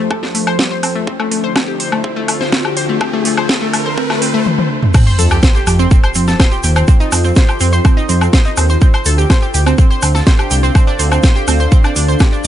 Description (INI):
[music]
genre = melodic techno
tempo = 124 BPM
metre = 4/4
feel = straight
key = unclear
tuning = A4 = 440 Hz
[part]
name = deep dark ambient pad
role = sustained chords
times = 0.0-12.5 s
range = D3 to F5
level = -23 LUFS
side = left 1 dB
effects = chorus, built-in reverb, sidechain pumping
[part]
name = analog pluck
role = arpeggios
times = 0.0-12.5 s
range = G3 to C6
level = -18 LUFS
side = equal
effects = chorus, sidechain pumping, dub echo
[part]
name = riser and sub drop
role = sound effects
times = 0.8-6.9 s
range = none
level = -21 LUFS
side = equal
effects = none
[part]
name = electronic kick drum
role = drums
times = 0.1-12.3 s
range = none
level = -10 LUFS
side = equal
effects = high-pass filter on kick, high-pass filter on room
[part]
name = house drum kit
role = drums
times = 0.1-12.5 s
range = crash cymbal, hi-hat, snare drum, toms, woodblock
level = -18 LUFS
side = left 1 dB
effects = none
[part]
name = tube shaker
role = percussion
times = 4.9-12.5 s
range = none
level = -25 LUFS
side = right 4 dB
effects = none
[part]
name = dark detuned saw bass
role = bass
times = 5.2-12.5 s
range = C2 to F2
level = -13 LUFS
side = equal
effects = sidechain pumping
[sound]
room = digital ambience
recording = nothing above 10.9 kHz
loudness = -10 LUFS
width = side -11 dB against mid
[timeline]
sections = 0.0-4.9 A section; 4.9-12.5 B section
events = build-up 0.0-4.9; riser 0.8-4.5; drum fill 4.5-4.9; drop 4.9-12.5; impact 4.9-6.9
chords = 0.0 F; 1.1 Dm7; 4.9 F; 8.8 Dm7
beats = 0.11 0.59 | 1.07 1.56 2.04 2.52 | 3.01 3.49 3.98 4.46 | 4.94 5.43 5.91 6.40 | 6.88 7.36 7.85 8.33 | 8.81 9.30 9.78 10.27 | 10.75 11.23 11.72 12.20